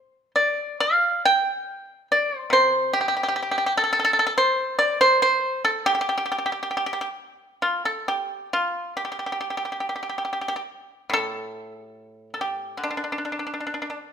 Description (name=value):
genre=chinese traditional, Chinese solo plucked strings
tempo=67-74 BPM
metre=2/4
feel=rubato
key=G shang mode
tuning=A4 = 440 Hz
part: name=pipa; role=solo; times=0.0-14.1 s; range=A2 to G5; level=-21 LUFS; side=equal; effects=none
room=moderate recital hall reverb, RT60 1.4 s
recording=minimal, uncompressed stereo recording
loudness=-21 LUFS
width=side -7 dB against mid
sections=0.0-7.6 A section; 7.6-14.1 B section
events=none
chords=none